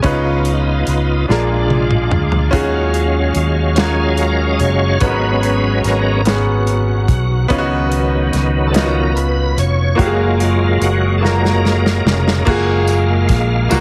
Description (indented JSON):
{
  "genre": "slow gospel",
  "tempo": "48 BPM (dotted quarters)",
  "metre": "6/8",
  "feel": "straight",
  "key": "F# major",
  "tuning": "A4 = 440 Hz",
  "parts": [
    { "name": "bright baby grand piano", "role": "accompaniment", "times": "0.0-13.8 s", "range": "G#2 to B4", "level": "-21 LUFS", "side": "equal", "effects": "none" },
    { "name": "bright tonewheel organ", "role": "sustained chords", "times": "0.0-13.8 s", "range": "C#3 to E#5", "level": "-21 LUFS", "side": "equal", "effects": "slow rotary speaker, overdrive, chorus vibrato" },
    { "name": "fingered electric bass", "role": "bass", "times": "0.0-13.8 s", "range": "E#1 to D#2", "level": "-19 LUFS", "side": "equal", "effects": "none" },
    { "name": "warm soul drum kit", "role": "drums", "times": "0.0-13.8 s", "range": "crash cymbal, hi-hat, kick drum, snare drum, toms", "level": "-21 LUFS", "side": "equal", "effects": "none" },
    { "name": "tambourine", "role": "percussion", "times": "12.9-13.8 s", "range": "none", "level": "-29 LUFS", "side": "equal", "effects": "none" }
  ],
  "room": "light reverb",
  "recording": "heavily compressed radio sound",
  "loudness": "-15 LUFS",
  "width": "mono",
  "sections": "0.0-12.5 A section; 12.5-13.8 B section",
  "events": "tonewheel organ solo 0.0-12.5, 12.5-13.8; drum fill 1.3-2.5, 11.2-12.5",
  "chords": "0.0 C#9; 1.3 A#7; 2.5 D#m11; 5.0 G#m11; 7.5 C#9sus4; 10.0 F#maj9"
}